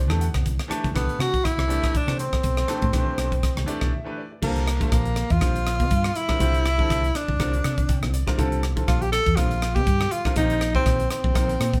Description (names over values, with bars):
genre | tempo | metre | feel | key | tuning
electric jazz fusion | 121 BPM | 4/4 | swing 55% on 16ths | unclear | A4 = 442 Hz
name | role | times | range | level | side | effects
bright grand piano | accompaniment | 0.0-11.7 s | C3 to G5 | -33 LUFS | equal | none
hollow-body short-scale fingered electric bass | bass | 0.0-11.8 s | Bb1 to C3 | -27 LUFS | equal | none
crisp fusion drum kit | drums | 0.1-11.8 s | crash cymbal, hi-hat, kick drum, rim click | -28 LUFS | equal | none
clear tenor saxophone | melody | 1.0-11.8 s | Bb3 to A4 | -28 LUFS | equal | none
room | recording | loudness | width
moderate studio reverb, RT60 0.6 s | band playing live in one room | -23 LUFS | mono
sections
0.0-4.4 A section; 4.4-11.8 B section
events
grand piano fill 0.0-0.5, 3.4-4.4, 7.6-8.4; break 3.9-4.4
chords
0.0 Cmaj9; 4.4 C13sus4; 10.4 Bbsus4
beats
| 0.46 0.95 1.45 1.95 | 2.44 2.94 3.44 3.93 | 4.43 4.92 5.42 5.91 | 6.41 6.90 7.40 7.89 | 8.39 8.88 9.38 9.87 | 10.37 10.86 11.35